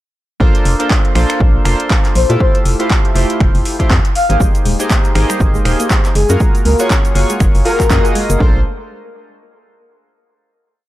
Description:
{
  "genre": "deep house",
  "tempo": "120 BPM",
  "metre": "4/4",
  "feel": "swing 58% on 16ths",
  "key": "unclear",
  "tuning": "A4 = 440 Hz",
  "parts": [
    { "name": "warm analog keys", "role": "stabs", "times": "0.4-8.6 s", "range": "A3 to Eb5", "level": "-18 LUFS", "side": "right 1 dB", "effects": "chorus, sidechain pumping" },
    { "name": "organ-like FM bass", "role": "bass", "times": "0.4-8.6 s", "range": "Eb1 to Bb2", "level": "-14 LUFS", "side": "equal", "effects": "sidechain pumping" },
    { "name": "electronic kick drum", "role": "drums", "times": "0.4-8.5 s", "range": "none", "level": "-14 LUFS", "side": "equal", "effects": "none" },
    { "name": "deep house drum kit", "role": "drums", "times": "0.5-8.4 s", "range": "finger snaps, handclaps, hi-hat", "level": "-21 LUFS", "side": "equal", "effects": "overdrive" },
    { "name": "breathy flute-like synth lead", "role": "melody", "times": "2.2-8.0 s", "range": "Ab4 to F5", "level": "-19 LUFS", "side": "left 3 dB", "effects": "tremolo, lush chorus, analog delay" },
    { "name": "soft round pluck", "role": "arpeggios", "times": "4.4-8.6 s", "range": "G3 to Ab4", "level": "-25 LUFS", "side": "left 1 dB", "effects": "chorus, sidechain pumping, analog delay" },
    { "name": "egg shaker", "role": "percussion", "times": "4.4-8.4 s", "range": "none", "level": "-28 LUFS", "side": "right 5 dB", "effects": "none" }
  ],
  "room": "little or no reverb",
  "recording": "dry, gritty hardware recording",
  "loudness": "-11 LUFS",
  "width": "side -15 dB against mid",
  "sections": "0.4-8.4 drop; 8.4-10.4 final chord",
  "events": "drop 0.4-8.4",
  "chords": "0.4 Bbmaj9; 2.4 Fmaj9; 4.2 Abmaj9; 6.2 Gbmaj9; 8.4 Bbmaj7(no3)"
}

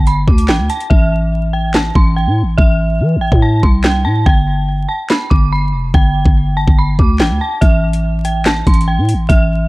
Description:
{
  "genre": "hip hop, drill",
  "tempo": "143 BPM",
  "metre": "4/4",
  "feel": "half-time",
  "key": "A minor",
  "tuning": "A4 = 436 Hz",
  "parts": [
    { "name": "dark detuned synth bell", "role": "melody", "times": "0.0-9.7 s", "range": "E5 to D6", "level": "-19 LUFS", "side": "right 1 dB", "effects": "chorus, tremolo, low-pass filter, tape echo" },
    { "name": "growling 808-style bass", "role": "bass", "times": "0.0-9.7 s", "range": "F1 to E3", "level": "-14 LUFS", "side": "equal", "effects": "none" },
    { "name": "drill drum kit", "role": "drums", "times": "0.1-9.4 s", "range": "handclaps, hi-hat, kick drum, snare drum", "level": "-12 LUFS", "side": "equal", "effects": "none" }
  ],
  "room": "little or no reverb",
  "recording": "dark, warm production, vinyl crackle",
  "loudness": "-11 LUFS",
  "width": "side -21 dB against mid",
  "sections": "0.0-9.7 A section",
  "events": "hi-hats muted 0.9-7.6",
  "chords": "0.0 G5; 0.9 Am; 4.3 G5; 7.6 A5"
}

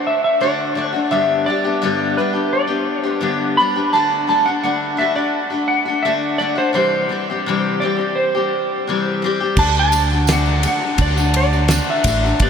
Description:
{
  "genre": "folk rock and heartland rock",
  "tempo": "85 BPM",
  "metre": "4/4",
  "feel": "straight",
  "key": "D mixolydian",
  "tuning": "A4 = 440 Hz",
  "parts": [
    { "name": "clean lap steel guitar", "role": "melody", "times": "0.0-12.5 s", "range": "B4 to B5", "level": "-19 LUFS", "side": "right 1 dB", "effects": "analog chorus, analog delay" },
    { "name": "picked steel-string acoustic guitar", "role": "accompaniment", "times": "0.0-12.5 s", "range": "G2 to G4", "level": "-20 LUFS", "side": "left 4 dB", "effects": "none" },
    { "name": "fingered electric bass", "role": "bass", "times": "9.6-12.5 s", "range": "G1 to D2", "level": "-18 LUFS", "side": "right 1 dB", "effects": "none" },
    { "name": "damped 70s drum kit", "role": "drums", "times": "9.6-12.5 s", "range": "crash cymbal, kick drum, ride cymbal, snare drum", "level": "-20 LUFS", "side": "right 1 dB", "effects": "none" },
    { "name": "tambourine", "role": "percussion", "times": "9.7-12.3 s", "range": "none", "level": "-31 LUFS", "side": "right 10 dB", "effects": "none" }
  ],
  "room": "wet huge ambient reverb, RT60 7.3 s",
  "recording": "dreamy mix soaked in reverb",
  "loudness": "-15 LUFS",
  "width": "side -7 dB against mid",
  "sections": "0.0-12.5 A section",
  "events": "none",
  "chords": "0.0 D; 1.1 G; 3.9 D; 6.7 C; 9.6 D"
}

